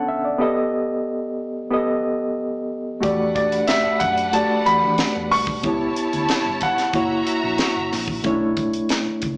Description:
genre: lush 1970s-style soul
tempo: 92 BPM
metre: 4/4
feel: straight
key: B minor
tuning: A4 = 440 Hz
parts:
  - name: reed electric piano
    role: accompaniment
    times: 0.0-9.4 s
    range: A3 to A5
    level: -21 LUFS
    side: equal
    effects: overdrive, fast tremolo
  - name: warm studio violin section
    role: second line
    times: 3.0-8.2 s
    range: D4 to A#5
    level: -26 LUFS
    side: equal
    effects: none
  - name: hollow-body short-scale fingered electric bass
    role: bass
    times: 3.0-9.4 s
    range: F#1 to E3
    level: -32 LUFS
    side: equal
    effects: none
  - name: tight funk drum kit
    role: drums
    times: 3.0-9.4 s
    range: hi-hat, kick drum, snare drum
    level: -25 LUFS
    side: equal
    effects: none
  - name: clear grand piano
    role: melody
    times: 3.4-7.9 s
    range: D5 to C#6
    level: -20 LUFS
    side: equal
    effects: none
room: moderate large studio reverb, RT60 1.0 s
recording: band playing live in one room, small speaker sound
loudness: -18 LUFS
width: side -29 dB against mid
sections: 0.0-9.4 A section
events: none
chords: 0.4 Baug7; 3.0 Em11; 5.6 C#m7b5; 6.9 F#7; 8.2 Bm11

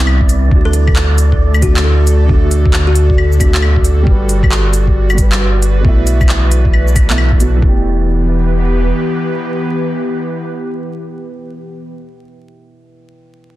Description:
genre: future garage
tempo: 135 BPM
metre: 4/4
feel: swing 63% on 16ths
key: E minor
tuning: A4 = 440 Hz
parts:
  - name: dark upright piano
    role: accompaniment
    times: 0.0-13.6 s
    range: B2 to B4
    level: -22 LUFS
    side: right 3 dB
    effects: vintage 12-bit sampler grit, sidechain pumping, digital delay
  - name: airy breathy pad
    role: sustained chords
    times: 0.0-11.9 s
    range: C3 to B4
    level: -20 LUFS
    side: left 1 dB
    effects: chorus, sidechain pumping
  - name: warm sub bass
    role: bass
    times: 0.0-8.9 s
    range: E1 to D2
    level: -12 LUFS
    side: equal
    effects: sidechain pumping
  - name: wind-like tuned noise texture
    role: texture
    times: 0.0-7.6 s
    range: D5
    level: -29 LUFS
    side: right 5 dB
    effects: built-in reverb
  - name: organic electronic drum kit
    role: drums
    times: 0.1-7.5 s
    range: claves, handclaps, hi-hat, shaker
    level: -19 LUFS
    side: left 1 dB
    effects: none
  - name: electronic kick drum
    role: drums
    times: 0.2-7.7 s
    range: none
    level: -12 LUFS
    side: equal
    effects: none
  - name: buzzing kalimba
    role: melody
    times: 0.7-3.5 s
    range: F#4 to A4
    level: -22 LUFS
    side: left 2 dB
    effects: vintage 12-bit sampler grit, digital delay
room: little or no reverb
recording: dense, heavily limited modern master, vinyl crackle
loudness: -10 LUFS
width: side -16 dB against mid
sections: 0.0-7.6 A section; 7.6-11.2 B section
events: none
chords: 0.0 Cmaj7; 0.5 D; 4.1 Gmaj7; 5.8 B7sus4; 7.6 Em

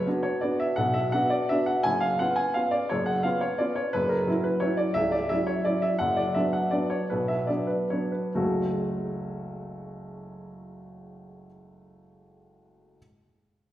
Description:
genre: classical, piano waltz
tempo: 130-183 BPM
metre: 3/4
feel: rubato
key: F# minor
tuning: A4 = 440 Hz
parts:
  - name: bright upright piano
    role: solo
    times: 0.0-13.0 s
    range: C#1 to G#5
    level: -24 LUFS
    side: equal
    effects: none
room: wet recital hall reverb, RT60 1.7 s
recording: heard from further back in the room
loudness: -24 LUFS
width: side -13 dB against mid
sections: 0.0-8.4 A section; 8.4-10.8 B section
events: slowing down 5.5-8.4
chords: 0.0 Bm/F#; 1.9 C#7/F#; 3.9 F#7; 6.0 Bm/F#; 8.4 F#m

